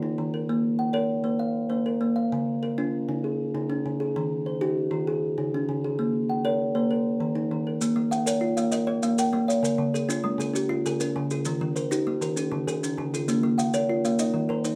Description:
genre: southern african traditional, mbira-style interlocking cycle.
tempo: 131 BPM (dotted quarters).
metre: 12/8.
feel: straight.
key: Bb equiheptatonic.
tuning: A4 = 440 Hz.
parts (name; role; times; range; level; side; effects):
kalimba; arpeggios; 0.0-14.8 s; Db3+43c to G5-43c; -27 LUFS; equal; none.
maracas; percussion; 7.8-14.8 s; none; -37 LUFS; equal; none.
kalimba; arpeggios; 8.0-14.8 s; Db3+43c to G5-43c; -32 LUFS; equal; none.
room: moderate studio reverb, RT60 0.6 s.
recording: none.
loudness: -26 LUFS.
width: mono.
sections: 0.0-7.8 A section; 7.8-14.8 A section.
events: none.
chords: 0.5 Bbm; 2.3 Db; 4.2 Eb; 5.1 Db; 6.0 Bbm; 6.9 Eb5; 7.8 Bbm; 9.6 Db; 11.5 Eb; 12.4 Db; 13.3 Bbm; 14.2 Eb5.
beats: 0.02 | 0.48 0.94 1.40 1.86 | 2.32 2.78 3.23 3.69 | 4.15 4.61 5.07 5.53 | 5.98 6.44 6.90 7.36 | 7.81 8.27 8.72 9.18 | 9.64 10.09 10.55 11.00 | 11.46 11.91 12.37 12.82 | 13.28 13.73 14.19 14.64.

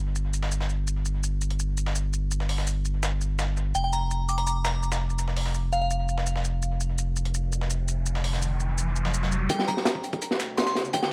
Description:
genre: drum and bass, jungle.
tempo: 167 BPM.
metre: 4/4.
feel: straight.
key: G minor.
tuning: A4 = 441 Hz.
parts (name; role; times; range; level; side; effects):
saturated sub bass; bass; 0.0-11.1 s; D1 to D2; -30 LUFS; equal; tube saturation, high-pass filter.
dusty soul sampler-style drum kit; drums; 0.2-11.1 s; hi-hat, shaker, snare drum; -36 LUFS; equal; overdrive, high-pass filter on perc, high-pass filter on snare, high-pass filter on hats, analog delay.
glassy synth bell; melody; 3.7-5.9, 9.5-11.1 s; F5 to D6; -32 LUFS; equal; chorus, analog delay.
riser; sound effects; 7.5-11.1 s; none; -38 LUFS; equal; none.
crunchy breakbeat drum kit; drums; 9.5-11.1 s; hi-hat, kick drum, snare drum; -28 LUFS; equal; high-pass filter on kick, high-pass filter on hats, high-pass filter on snare, high-pass filter on room, analog delay.
room: light reverb, small room ambience.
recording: echo-heavy mix.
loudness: -27 LUFS.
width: mono.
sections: 0.0-9.5 A section; 9.5-11.1 B section.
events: riser 7.6-9.5, 9.5-11.1; build-up 9.5-11.1.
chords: 0.0 N.C.; 9.5 G5.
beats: 0.16 0.52 | 0.88 1.24 1.59 1.95 | 2.31 2.67 3.03 3.39 | 3.75 4.11 4.47 4.83 | 5.19 5.55 5.91 6.26 | 6.62 6.98 7.34 7.70 | 8.06 8.42 8.78 9.14 | 9.50 9.86 10.22 10.58 | 10.94.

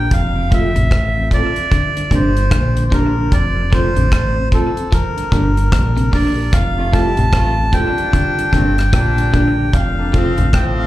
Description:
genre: roots reggae.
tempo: 75 BPM.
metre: 4/4.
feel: swing 62% on 16ths.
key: F major.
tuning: A4 = 438 Hz.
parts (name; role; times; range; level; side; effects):
melodica; melody; 0.0-10.9 s; A4 to A5; -20 LUFS; right 1 dB; tape echo, slapback echo.
mellow electric guitar; accompaniment; 0.0-10.3 s; C4 to Bb4; -23 LUFS; right 1 dB; tape echo, slapback echo.
deep dub fingered electric bass; bass; 0.0-10.9 s; F1 to Bb1; -16 LUFS; equal; none.
deep reggae drum kit; drums; 0.1-10.8 s; hi-hat, kick drum, rim click; -16 LUFS; equal; none.
mellow tonewheel organ; accompaniment; 0.4-10.9 s; F2 to D4; -27 LUFS; left 1 dB; chorus vibrato, slow rotary speaker, tube saturation, dub echo, slapback echo.
clean electric guitar; arpeggios; 0.5-10.5 s; A2 to F3; -25 LUFS; left 3 dB; tube saturation, spring reverb, slapback echo.
warm horn section; second line; 6.8-10.9 s; A2 to G4; -24 LUFS; left 1 dB; tape echo, slapback echo.
room: studio ambience.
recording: live gig heard through the venue's PA, club reverb.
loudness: -13 LUFS.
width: side -15 dB against mid.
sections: 0.0-10.9 A section.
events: none.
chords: 0.1 F; 1.7 Gm; 3.3 F; 4.9 Gm; 6.5 F; 8.1 Gm; 9.7 F.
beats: | 0.11 0.91 1.72 2.52 | 3.32 4.12 4.92 5.72 | 6.53 7.33 8.13 8.93 | 9.73 10.54.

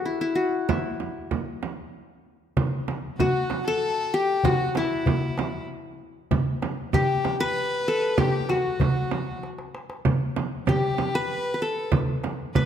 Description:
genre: Arabic maqam ensemble.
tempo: 96 BPM.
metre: 3/4.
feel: straight.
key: B maqam hijaz.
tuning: A4 = 440 Hz.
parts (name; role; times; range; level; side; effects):
qanun; melody; 0.0-12.7 s; E4 to B4; -26 LUFS; left 3 dB; none.
frame drum; percussion; 0.7-12.7 s; none; -28 LUFS; right 5 dB; none.
darbuka; percussion; 2.6-12.7 s; none; -27 LUFS; equal; none.
bright violin; second line; 3.2-12.7 s; E4 to B4; -31 LUFS; left 1 dB; none.
room: moderate scoring stage reverb, RT60 1.8 s.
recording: none.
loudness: -23 LUFS.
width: side -9 dB against mid.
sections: 0.0-2.6 A section; 2.6-12.7 B section.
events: drum fill 9.4-10.1.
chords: none.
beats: 0.07 | 0.69 1.32 1.94 | 2.57 3.19 3.82 | 4.44 5.07 5.69 | 6.32 6.94 7.56 | 8.19 8.81 9.44 | 10.06 10.68 11.31 | 11.93 12.55.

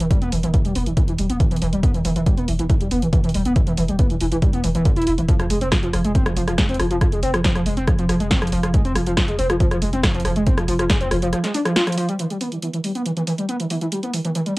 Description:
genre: driving peak-time techno.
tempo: 139 BPM.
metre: 4/4.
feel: straight.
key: E phrygian.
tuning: A4 = 441 Hz.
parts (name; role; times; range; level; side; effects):
overdriven synth lead; riff; 0.0-14.6 s; D3 to F4; -21 LUFS; equal; distortion, lush chorus, sidechain pumping, cassette tape, analog delay.
warm sub bass; bass; 0.0-11.3 s; E1 to F1; -26 LUFS; equal; overdrive, sidechain pumping, low-pass filter.
techno drum kit; drums; 0.0-14.6 s; hi-hat, rim click, snare drum; -25 LUFS; equal; cassette tape.
electronic kick drum; drums; 0.1-11.0 s; none; -19 LUFS; equal; cassette tape.
room: moderate booth ambience, RT60 0.2 s.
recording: home recording on cassette.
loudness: -17 LUFS.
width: side -21 dB against mid.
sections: 0.0-12.2 A section; 12.2-14.6 B section.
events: filter sweep on analog synth lead 0.0-12.2, 12.2-14.6.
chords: 0.0 Em; 5.3 Fm; 12.2 Em.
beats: | 0.11 0.54 0.97 1.40 | 1.83 2.27 2.70 3.13 | 3.56 3.99 4.42 4.86 | 5.29 5.72 6.15 6.58 | 7.01 7.44 7.88 8.31 | 8.74 9.17 9.60 10.03 | 10.47 10.90 11.33 11.76 | 12.19 12.62 13.06 13.49 | 13.92 14.35.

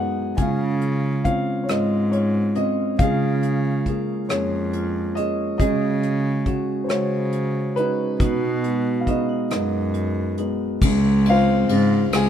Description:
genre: acoustic folk-pop ballad.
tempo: 46 BPM (dotted quarters).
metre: 6/8.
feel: straight.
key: Db major.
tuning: A4 = 439 Hz.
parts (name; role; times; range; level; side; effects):
dark concert grand piano; melody; 0.0-12.3 s; Cb3 to Ab5; -24 LUFS; left 2 dB; none.
vibraphone with medium hard mallets; arpeggios; 0.0-12.3 s; Ab3 to Gb4; -26 LUFS; right 3 dB; none.
rich cello; bass; 0.0-12.3 s; Db2 to Db3; -23 LUFS; equal; none.
soft brush drum kit; drums; 0.4-12.3 s; hi-hat, kick drum, ride cymbal, rim click; -24 LUFS; equal; none.
hollow soft pad; sustained chords; 10.8-12.3 s; Db3 to F5; -32 LUFS; left 2 dB; none.
room: little or no reverb.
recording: minimal, uncompressed stereo recording.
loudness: -19 LUFS.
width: side -9 dB against mid.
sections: 0.0-10.8 A section; 10.8-12.3 B section.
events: none.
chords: 0.4 Dbmaj7; 3.0 Bbm7/Db; 5.6 Gbsus2/Db; 8.2 Cb6; 10.8 Dbmaj7.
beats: | 0.39 1.69 | 2.99 4.30 | 5.60 6.90 | 8.21 9.52 | 10.82 12.13.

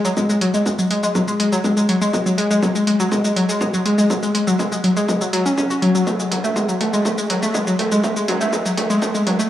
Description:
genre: melodic techno.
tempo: 122 BPM.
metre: 4/4.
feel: straight.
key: F# minor.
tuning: A4 = 439 Hz.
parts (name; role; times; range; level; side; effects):
analog pluck; arpeggios; 0.0-9.5 s; F#3 to F#4; -17 LUFS; left 1 dB; chorus, sidechain pumping, analog delay.
punchy analog drum machine; drums; 0.0-9.5 s; hi-hat, shaker, toms; -25 LUFS; equal; high-pass filter on perc, high-pass filter on toms, high-pass filter on hats, high-pass filter on room.
electronic kick drum; drums; 0.2-9.1 s; none; -26 LUFS; right 1 dB; high-pass filter on kick, high-pass filter on room.
room: wet concert hall reverb, RT60 1.8 s.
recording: dry, gritty hardware recording, transformer saturation, high-pass filter, small room ambience.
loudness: -16 LUFS.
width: side -12 dB against mid.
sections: 0.0-9.5 A section.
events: build-up 0.0-9.5; drum fill 0.0-9.5.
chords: none.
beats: | 0.17 0.66 1.15 1.64 | 2.13 2.63 3.12 3.61 | 4.10 4.59 5.09 5.58 | 6.07 6.56 7.05 7.54 | 8.04 8.53 9.02.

